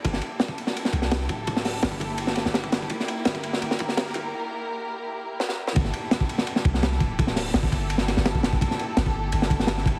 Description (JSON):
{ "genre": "drum and bass, jungle", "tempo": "168 BPM", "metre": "4/4", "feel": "straight", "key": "G dorian", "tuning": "A4 = 440 Hz", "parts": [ { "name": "rich studio string section", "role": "sustained chords", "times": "0.0-10.0 s", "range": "Bb3 to Bb4", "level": "-35 LUFS", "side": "equal", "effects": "none" }, { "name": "long sustained 808-style bass", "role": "bass", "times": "0.0-10.0 s", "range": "D1 to C2", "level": "-31 LUFS", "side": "equal", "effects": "none" }, { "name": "crunchy breakbeat drum kit", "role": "drums", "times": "0.0-10.0 s", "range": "hi-hat, kick drum, ride cymbal, snare drum", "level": "-27 LUFS", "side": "equal", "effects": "high-pass filter on kick, high-pass filter on cymbals, high-pass filter on hats, high-pass filter on snare, high-pass filter on room" } ], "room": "light reverb, studio ambience", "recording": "heavily compressed radio sound, multiband compression, vinyl crackle, high-pass filter", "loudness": "-25 LUFS", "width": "mono", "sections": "0.0-5.8 A section; 5.8-10.0 B section", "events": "build-up 0.0-5.8; break 4.3-5.8; drum fill 5.4-5.8; drop 5.8-10.0", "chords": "0.0 Gm69" }